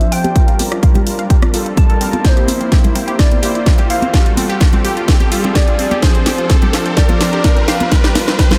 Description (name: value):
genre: progressive house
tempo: 127 BPM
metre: 4/4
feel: straight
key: F major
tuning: A4 = 440 Hz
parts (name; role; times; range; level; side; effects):
- soft octave-layered synth lead; melody; 0.0-8.1 s; C5 to A5; -25 LUFS; equal; chorus, phaser, cassette tape, sidechain pumping, delay
- glassy wavetable pluck; second line; 0.0-8.1 s; C5 to A5; -31 LUFS; equal; none
- shimmering ambient pad; sustained chords; 0.0-8.6 s; E3 to A4; -32 LUFS; equal; none
- analog pluck; arpeggios; 0.0-8.6 s; C4 to F5; -25 LUFS; equal; chorus, sidechain pumping, delay
- soft supersaw; stabs; 0.0-8.6 s; F3 to C5; -23 LUFS; equal; sidechain pumping, low-pass filter, delay
- house drum kit; drums; 0.0-8.6 s; hi-hat, rim click, snare drum; -22 LUFS; equal; overdrive, sidechain pumping on hats
- riser; sound effects; 0.5-8.6 s; none; -28 LUFS; equal; none
- congas and bongos; percussion; 0.2-8.6 s; none; -25 LUFS; equal; sidechain pumping on perc
- electronic kick drum; drums; 0.4-8.5 s; none; -14 LUFS; equal; overdrive
room: light reverb, digital ambience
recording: none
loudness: -13 LUFS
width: mono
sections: 0.0-8.6 A section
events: build-up 0.0-8.6; filter sweep on synth pluck 0.0-8.6; filter sweep on supersaw synth 0.0-8.6; riser 0.5-8.6; drum fill 2.2-8.6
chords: 0.4 Gm7; 2.2 C7; 4.1 Fadd9; 6.0 Dm7; 7.9 Gm7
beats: | 0.36 0.83 1.30 1.77 | 2.25 2.72 3.19 3.66 | 4.14 4.61 5.08 5.55 | 6.03 6.50 6.97 7.44 | 7.92 8.39